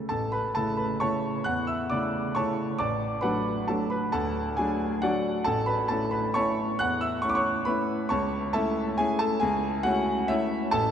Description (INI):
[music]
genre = classical, piano waltz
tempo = 135 BPM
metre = 3/4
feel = uneven beats, rubato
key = A major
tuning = A4 = 440 Hz
[part]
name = clear grand piano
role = solo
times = 0.0-10.9 s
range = A1 to F#6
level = -25 LUFS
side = equal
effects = none
[sound]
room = wet cathedral reverb, RT60 5.7 s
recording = in a vast, echoing space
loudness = -25 LUFS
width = side -8 dB against mid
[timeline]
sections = 0.1-10.9 A section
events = none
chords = 0.1 A; 2.8 D/A; 5.5 A; 8.1 A/C#